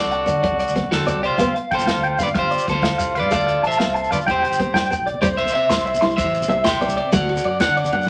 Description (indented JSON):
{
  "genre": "highlife guitar band",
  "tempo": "126 BPM (dotted quarters)",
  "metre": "12/8",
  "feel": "straight",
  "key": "C major",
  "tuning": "A4 = 440 Hz",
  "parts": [
    { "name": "electric guitar at the edge of break-up", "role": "melody", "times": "0.0-8.1 s", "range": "F#4 to G5", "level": "-24 LUFS", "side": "equal", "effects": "none" },
    { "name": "clear trumpet", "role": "second line", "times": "0.0-4.9 s", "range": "C4 to A4", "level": "-32 LUFS", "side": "equal", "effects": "none" },
    { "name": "nylon-string guitar", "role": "accompaniment", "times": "0.0-8.1 s", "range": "A3 to E4", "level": "-27 LUFS", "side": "equal", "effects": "none" },
    { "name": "clean electric guitar", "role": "arpeggios", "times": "0.0-8.1 s", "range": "F#4 to C6", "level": "-24 LUFS", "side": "equal", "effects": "tremolo" },
    { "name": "fingered electric bass", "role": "bass", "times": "0.0-8.0 s", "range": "E1 to D3", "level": "-31 LUFS", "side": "equal", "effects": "none" },
    { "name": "shekere", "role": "percussion", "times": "0.0-8.1 s", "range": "none", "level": "-35 LUFS", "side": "equal", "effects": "none" },
    { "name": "warm soul drum kit", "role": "drums", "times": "0.1-8.0 s", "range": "hi-hat, kick drum, ride cymbal, snare drum", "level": "-30 LUFS", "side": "equal", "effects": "none" },
    { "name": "congas", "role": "percussion", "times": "0.3-8.1 s", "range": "none", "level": "-32 LUFS", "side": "equal", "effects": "none" }
  ],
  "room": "moderate studio reverb, RT60 0.6 s",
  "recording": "none",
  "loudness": "-19 LUFS",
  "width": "mono",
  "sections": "0.0-5.2 A section; 5.2-8.1 B section",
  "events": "none",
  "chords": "0.0 D7; 1.4 G7sus4; 3.3 Dm; 4.3 Gsus4; 5.2 Cadd9; 7.1 D7",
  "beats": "0.44 0.92 | 1.39 1.87 2.35 2.83 | 3.31 3.79 4.26 4.74 | 5.22 5.70 6.17 6.65 | 7.13 7.60 8.08"
}